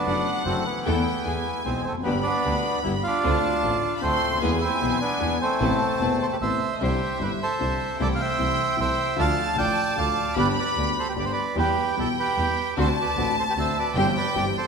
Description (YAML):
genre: tango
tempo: 152 BPM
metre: 3/4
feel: rubato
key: A minor, C major from 6.8 s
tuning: A4 = 438 Hz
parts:
  - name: bandoneon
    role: melody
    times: 0.0-14.7 s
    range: E3 to A5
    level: -25 LUFS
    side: right 2 dB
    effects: none
  - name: clear studio violin section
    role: second line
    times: 0.0-14.7 s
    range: D#5 to C6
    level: -29 LUFS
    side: left 2 dB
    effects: none
  - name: warm grand piano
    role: accompaniment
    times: 0.1-14.5 s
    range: E1 to A4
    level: -28 LUFS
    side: left 4 dB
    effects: none
  - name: dark chamber string section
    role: stabs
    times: 0.1-14.5 s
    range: B3 to C5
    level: -34 LUFS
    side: right 2 dB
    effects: none
  - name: clear double bass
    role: bass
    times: 0.1-14.5 s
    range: E1 to E2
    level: -30 LUFS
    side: right 2 dB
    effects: none
room: wet concert hall reverb, RT60 2.4 s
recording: minimal, uncompressed stereo recording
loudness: -21 LUFS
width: side -5 dB against mid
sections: 0.0-6.8 A section; 6.8-14.7 B section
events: none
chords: 0.0 Dadd9/F#; 0.9 Esus4; 1.3 E; 2.0 G; 3.2 Dm7; 4.4 E; 5.6 Amadd9; 6.8 Cadd9; 8.0 Am/C; 9.2 Dm; 10.4 G; 11.6 Em; 12.8 D7; 14.0 C/G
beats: 0.07 0.46 | 0.86 1.25 1.65 | 2.05 2.45 2.84 | 3.24 3.63 4.03 | 4.42 4.81 5.21 | 5.60 6.00 6.40 | 6.81 7.21 7.61 | 8.00 8.40 8.80 | 9.20 9.59 9.98 | 10.38 10.78 11.18 | 11.58 11.98 12.38 | 12.77 13.17 13.56 | 13.96 14.36